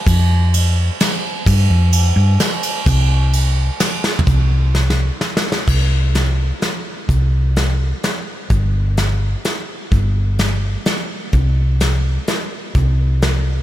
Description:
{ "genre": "folk rock and heartland rock", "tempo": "127 BPM", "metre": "3/4", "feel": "straight", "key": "unclear", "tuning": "A4 = 440 Hz", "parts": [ { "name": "hollow-body short-scale fingered electric bass", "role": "bass", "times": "0.1-13.6 s", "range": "G1 to G2", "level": "-14 LUFS", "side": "equal", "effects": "none" }, { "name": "soft brush drum kit", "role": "drums", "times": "0.1-13.3 s", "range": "crash cymbal, hi-hat, kick drum, ride cymbal, snare drum, toms", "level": "-19 LUFS", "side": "equal", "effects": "none" } ], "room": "light reverb", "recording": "none", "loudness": "-14 LUFS", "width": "side -13 dB against mid", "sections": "0.0-4.3 A section; 4.3-5.7 B section; 5.7-13.6 C section", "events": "drum fill 4.0, 4.7-5.7", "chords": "none", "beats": "| 0.06 0.53 0.99 | 1.46 1.93 2.39 | 2.86 3.33 3.79 | 4.26 4.73 5.20 | 5.67 6.14 6.61 | 7.08 7.55 8.03 | 8.50 8.97 9.44 | 9.92 10.39 10.86 | 11.33 11.81 12.28 | 12.75 13.22" }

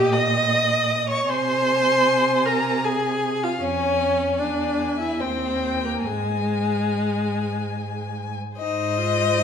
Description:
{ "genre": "classical, slow romantic movement for string quartet", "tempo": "69-79 BPM", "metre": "3/4", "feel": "rubato", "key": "Ab major", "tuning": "A4 = 440 Hz", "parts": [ { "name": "warm violin", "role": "melody", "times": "0.0-9.4 s", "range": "Eb5 to Ab5", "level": "-27 LUFS", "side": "left 8 dB", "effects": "none" }, { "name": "warm violin", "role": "second line", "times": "0.0-9.4 s", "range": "Ab4 to Eb6", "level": "-26 LUFS", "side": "left 3 dB", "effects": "none" }, { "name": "warm viola", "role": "accompaniment", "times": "0.0-9.4 s", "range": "Ab3 to Eb5", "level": "-23 LUFS", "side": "right 1 dB", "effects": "none" }, { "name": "warm cello", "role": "bass", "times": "0.0-9.4 s", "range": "Eb2 to C3", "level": "-27 LUFS", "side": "right 4 dB", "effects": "none" } ], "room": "wet recital hall reverb, RT60 1.6 s", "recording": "minimal, uncompressed stereo recording", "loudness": "-20 LUFS", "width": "side -7 dB against mid", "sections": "0.0-8.6 A section", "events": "none", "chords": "0.0 Eb5/Bb; 1.3 Ab/C; 3.6 Db/F; 4.4 E7; 5.2 Eb; 6.1 N.C.; 8.6 Ab", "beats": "0.53 | 1.29 2.08 2.85 | 3.62 4.39 5.21 | 6.06 6.91 7.76 | 8.58 9.37" }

